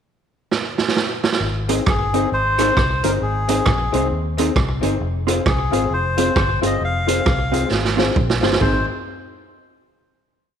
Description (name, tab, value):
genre	ska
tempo	133 BPM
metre	4/4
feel	swing 60% on 8ths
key	Ab major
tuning	A4 = 440 Hz
part	raw garage drum kit	drums	0.5-8.7 s	hi-hat, kick drum, rim click, snare drum	-20 LUFS	right 3 dB	slapback echo
part	vintage muted fingered electric bass	bass	1.4-8.9 s	F1 to Eb2	-23 LUFS	left 1 dB	none
part	vintage hollow-body jazz guitar	accompaniment	1.7-8.8 s	C4 to Ab4	-26 LUFS	right 9 dB	none
part	warm upright piano	stabs	1.7-8.8 s	C4 to C5	-24 LUFS	left 8 dB	slapback echo
part	melodica	melody	1.9-8.9 s	Ab4 to F5	-22 LUFS	left 2 dB	slapback echo
room	moderate echo chamber reverb, RT60 1.8 s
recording	1960s-style stereo with parts hard left and right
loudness	-16 LUFS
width	side -8 dB against mid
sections	0.0-1.4 pickup bar; 1.4-8.6 head; 8.6-10.4 final chord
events	drum fill 0.5-1.4, 7.7-8.6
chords	0.0 N.C.; 1.4 Ab; 5.0 Fm; 8.6 Ab